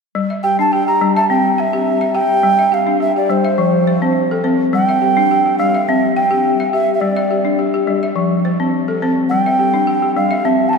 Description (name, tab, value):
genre	west african traditional, West African string and xylophone music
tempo	105 BPM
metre	4/4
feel	straight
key	unclear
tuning	A4 = 440 Hz
part	balafon	arpeggios	0.2-10.8 s	F3 to G5	-16 LUFS	left 3 dB	none
part	breathy reedy alto ocarina	melody	0.4-10.8 s	C5 to Bb5	-16 LUFS	right 2 dB	none
room	wet cathedral reverb, RT60 6.3 s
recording	in a vast, echoing space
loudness	-13 LUFS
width	side -4 dB against mid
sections	0.1-10.8 A section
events	none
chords	0.1 G5; 1.3 C; 2.4 G5; 3.6 F; 4.7 G5; 5.9 C; 7.0 G5; 8.2 F; 9.3 G5